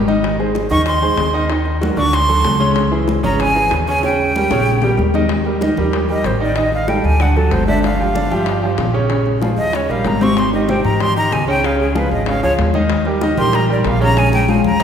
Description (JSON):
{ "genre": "Afro-Cuban jazz", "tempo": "189 BPM", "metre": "4/4", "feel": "straight", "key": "Eb major from 5.3 s", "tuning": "A4 = 440 Hz", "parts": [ { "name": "clear concert grand piano", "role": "accompaniment", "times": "0.0-14.8 s", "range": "C3 to Eb5", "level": "-18 LUFS", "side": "right 2 dB", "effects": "none" }, { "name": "upright bass", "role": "bass", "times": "0.0-14.8 s", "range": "G1 to Ab2", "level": "-19 LUFS", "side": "equal", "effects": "none" }, { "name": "bongos", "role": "percussion", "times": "0.1-14.8 s", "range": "none", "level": "-25 LUFS", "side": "left 4 dB", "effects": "none" }, { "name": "congas", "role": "percussion", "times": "0.1-14.8 s", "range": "none", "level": "-22 LUFS", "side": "left 4 dB", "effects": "none" }, { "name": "breathy bright jazz flute", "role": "melody", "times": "0.7-14.8 s", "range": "Ab4 to Db6", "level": "-19 LUFS", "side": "equal", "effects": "none" } ], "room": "wet scoring stage reverb, RT60 2.1 s", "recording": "recorded in a church or concert hall", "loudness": "-13 LUFS", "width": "side -8 dB against mid", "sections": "0.0-5.3 A section; 5.3-14.8 B section", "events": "drum fill 4.0-5.3, 14.2-14.8; flute solo 5.3-14.8", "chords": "0.2 Ab; 1.5 Ebm; 2.1 D7; 2.8 Dbmadd9; 4.0 Eb7; 5.3 Eb; 6.6 F13/A; 7.2 D; 7.8 Gm7; 9.1 Bbm7; 9.7 Eb7; 10.4 Abmaj7; 11.6 Dbadd9; 12.9 Eb; 14.2 Bbm7", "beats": "| 0.23 0.55 0.86 1.18 | 1.50 1.81 2.13 2.44 | 2.76 3.08 3.40 3.71 | 4.03 4.35 4.66 4.98 | 5.30 5.62 5.93 6.25 | 6.57 6.88 7.20 7.52 | 7.83 8.15 8.47 8.78 | 9.10 9.42 9.73 10.05 | 10.37 10.68 11.00 11.31 | 11.63 11.95 12.27 12.58 | 12.90 13.22 13.53 13.85 | 14.17 14.48 14.80" }